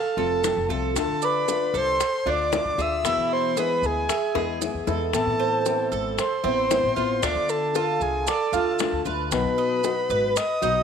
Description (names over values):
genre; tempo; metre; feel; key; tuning
latin, Cuban son and guajira; 115 BPM; 4/4; straight; A harmonic minor; A4 = 443 Hz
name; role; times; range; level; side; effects
reedy FM lead; melody; 0.0-10.8 s; G#4 to E5; -24 LUFS; equal; chorus
Cuban tres; arpeggios; 0.0-10.8 s; C4 to F5; -28 LUFS; right 8 dB; none
nylon-string guitar; accompaniment; 0.2-10.8 s; B2 to F#4; -30 LUFS; left 10 dB; none
upright bass; bass; 0.2-10.8 s; F1 to E3; -33 LUFS; equal; none
bongos; percussion; 0.2-10.8 s; none; -31 LUFS; left 12 dB; none
maracas; percussion; 0.4-10.8 s; none; -35 LUFS; right 13 dB; none
room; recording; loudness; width
moderate echo chamber reverb, RT60 1.7 s; 1960s-style stereo with parts hard left and right; -21 LUFS; side -7 dB against mid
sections
0.0-5.1 A section; 5.1-10.8 A section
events
drum fill 4.4-5.1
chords
0.0 F; 1.0 Dm; 3.0 E; 5.1 Amadd9; 7.2 Dm; 9.3 B